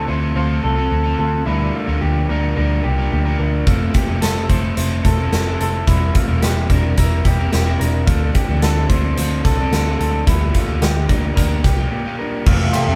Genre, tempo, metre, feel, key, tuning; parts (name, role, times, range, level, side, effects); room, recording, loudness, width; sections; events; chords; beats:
jangly indie pop; 109 BPM; 4/4; straight; A4 = 444 Hz
crunchy overdriven guitar; accompaniment; 0.0-13.0 s; F2 to Bb4; -26 LUFS; equal; tube saturation
electric guitar through a small old amp; arpeggios; 0.0-13.0 s; G3 to C5; -26 LUFS; equal
vintage muted picked electric bass; bass; 0.0-13.0 s; E1 to F2; -21 LUFS; equal
big rock drum kit; drums; 3.7-12.9 s; crash cymbal, hi-hat, kick drum, ride cymbal, snare drum; -21 LUFS; equal
warm analog pad; sustained chords; 12.5-13.0 s; A4 to C6; -25 LUFS; equal; chorus
group handclap; percussion; 12.7-12.9 s; -32 LUFS; equal
moderate studio reverb, RT60 0.9 s; band playing live in one room; -17 LUFS; mono
0.0-12.5 A section
break 11.9-12.5
0.0 Dm7; 3.7 Fmaj7; 5.9 C7/E; 8.1 Dm7
0.36 0.92 | 1.47 2.02 2.57 3.12 | 3.67 4.22 4.77 5.32 | 5.87 6.42 6.97 7.52 | 8.07 8.62 9.17 9.72 | 10.27 10.82 11.37 11.92 | 12.47